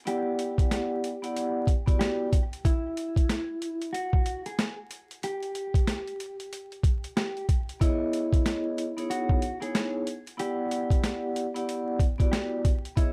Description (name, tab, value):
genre	hip hop, boom-bap hip-hop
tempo	93 BPM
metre	4/4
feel	swing 62% on 16ths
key	unclear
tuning	A4 = 439 Hz
part	mellow electric guitar	melody	0.1-13.1 s	E4 to G#4	-36 LUFS	equal	spring reverb, high-pass filter, low-pass filter
part	vibraphone with soft mallets	accompaniment	0.1-2.3, 7.8-13.1 s	B3 to F#5	-33 LUFS	equal	high-pass filter, low-pass filter
part	boom bap sampler-style drum kit	drums	0.1-13.1 s	hi-hat, kick drum, snare drum	-28 LUFS	equal	none
room	little or no reverb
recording	vinyl crackle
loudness	-28 LUFS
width	mono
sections	0.0-13.1 A section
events	none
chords	0.1 Em9; 2.6 N.C.; 7.8 C#m9; 10.4 Em9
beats	| 0.07 0.71 1.36 2.00 | 2.65 3.29 3.94 4.58 | 5.23 5.87 6.52 7.16 | 7.81 8.45 9.10 9.74 | 10.39 11.04 11.68 12.32 | 12.97